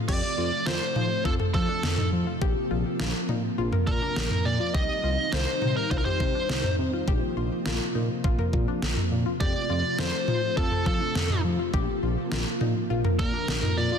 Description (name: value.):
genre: synth-pop.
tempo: 103 BPM.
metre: 4/4.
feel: straight.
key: F mixolydian.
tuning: A4 = 440 Hz.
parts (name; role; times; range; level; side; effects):
string machine, cellos; sustained chords; 0.0-14.0 s; C3 to F4; -31 LUFS; equal; ensemble chorus, shimmer reverb.
analog pluck; arpeggios; 0.0-14.0 s; D4 to Bb4; -35 LUFS; left 7 dB; chorus, ping-pong delay, shimmer reverb.
biting lead guitar; melody; 0.1-14.0 s; A4 to Eb5; -30 LUFS; right 1 dB; overdrive, ping-pong delay, shimmer reverb.
smooth synth bass; bass; 0.1-13.9 s; Bb1 to F3; -30 LUFS; equal; none.
pop drum kit; drums; 0.1-13.8 s; crash cymbal, kick drum, snare drum, toms; -27 LUFS; equal; overdrive.
room: light reverb.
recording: dense, heavily limited modern master.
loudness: -24 LUFS.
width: side -7 dB against mid.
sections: 0.1-14.0 A section.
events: none.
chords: 0.1 F; 2.4 Bbsus2; 4.7 Cm; 7.1 Bbsus2; 9.4 F; 11.7 Bbsus2.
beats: | 0.09 0.67 1.25 1.83 | 2.42 3.00 3.58 4.16 | 4.75 5.33 5.91 6.49 | 7.08 7.66 8.24 8.82 | 9.41 9.99 10.57 11.15 | 11.74 12.32 12.90 13.48.